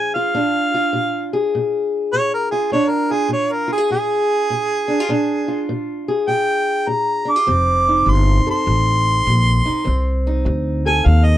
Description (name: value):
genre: acoustic country blues, solo or duo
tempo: 101 BPM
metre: 4/4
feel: swing 65% on 8ths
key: Bb mixolydian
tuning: A4 = 440 Hz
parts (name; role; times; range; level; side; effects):
- mellow harmonica; melody; 0.0-11.4 s; Ab4 to D6; -18 LUFS; right 2 dB; none
- fingerpicked steel-string acoustic guitar; accompaniment; 0.0-11.4 s; F2 to A4; -21 LUFS; left 1 dB; none
- upright bass; bass; 7.5-11.4 s; F1 to Eb2; -16 LUFS; equal; none
room: little or no reverb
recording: dry, close 1970s-style studio recording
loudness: -16 LUFS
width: side -13 dB against mid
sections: 0.0-11.4 A section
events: harmonica solo 0.0-11.4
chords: 0.0 Bb7; 7.5 F7